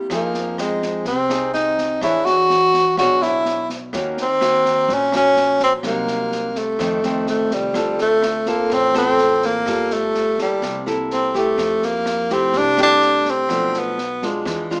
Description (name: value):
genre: bossa nova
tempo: 126 BPM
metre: 4/4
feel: straight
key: D minor from 7.8 s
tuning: A4 = 440 Hz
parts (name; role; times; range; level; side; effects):
- nylon-string guitar; accompaniment; 0.0-14.8 s; F2 to C#5; -26 LUFS; equal; none
- warm tenor saxophone; melody; 0.1-14.7 s; G3 to F#4; -20 LUFS; equal; none
- upright bass; bass; 0.1-14.8 s; G1 to F2; -38 LUFS; equal; none
- open jazz drum kit; drums; 0.1-14.8 s; kick drum, rim click, snare drum; -34 LUFS; equal; none
room: moderate large studio reverb, RT60 1.3 s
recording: band playing live in one room, small speaker sound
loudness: -19 LUFS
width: mono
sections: 0.0-7.8 A section; 7.8-14.8 B section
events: none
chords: 0.1 Fm7; 2.0 E13; 3.9 Ebm7; 5.8 Cm7b5; 6.8 F7; 7.8 Dm7; 9.7 Gm9; 10.6 C6; 11.6 Fmaj9; 13.5 Bm7b5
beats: | 0.11 0.58 1.06 1.54 | 2.02 2.50 2.97 3.45 | 3.93 4.41 4.88 5.36 | 5.84 6.32 6.80 7.27 | 7.75 8.23 8.71 9.19 | 9.67 10.14 10.62 11.10 | 11.58 12.06 12.54 13.02 | 13.50 13.97 14.45